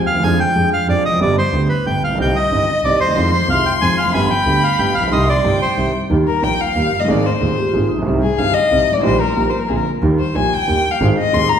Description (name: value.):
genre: tango.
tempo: 184 BPM.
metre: 3/4.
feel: rubato.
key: C harmonic minor, Eb major from 6.1 s.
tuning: A4 = 440 Hz.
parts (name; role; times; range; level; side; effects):
warm concert grand piano; accompaniment; 0.0-11.5 s; Eb1 to Ab4; -18 LUFS; right 1 dB; none.
dark double bass; bass; 0.0-11.5 s; F1 to F2; -21 LUFS; right 1 dB; none.
bandoneon; melody; 0.1-5.9 s; B4 to Ab5; -18 LUFS; right 1 dB; none.
warm violin; second line; 2.2-11.6 s; Ab4 to C6; -18 LUFS; left 4 dB; none.
vibraphone with medium mallets; second line; 7.6-8.1 s; Eb4 to G4; -22 LUFS; right 1 dB; none.
room: wet recital hall reverb, RT60 1.4 s.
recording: recorded in a church or concert hall.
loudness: -14 LUFS.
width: side -8 dB against mid.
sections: 0.0-6.1 A section; 6.1-11.6 B section.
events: violin solo 6.1-11.6.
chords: 0.2 Ddim/F; 1.2 G; 2.2 Cm; 3.2 Fm7; 4.1 G; 5.1 Cm; 6.1 Eb; 7.1 Abadd9; 8.1 Cm; 9.0 Eb/Bb; 9.7 Bbadd9; 10.0 Eb; 11.0 Ab.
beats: | 0.23 0.55 0.88 | 1.20 1.53 1.86 | 2.19 2.52 2.84 | 3.17 3.49 3.81 | 4.14 4.46 4.79 | 5.12 5.44 5.78 | 6.11 6.43 6.76 | 7.09 7.42 7.74 | 8.06 8.39 8.71 | 9.04 9.36 9.70 | 10.03 10.36 10.69 | 11.01 11.34.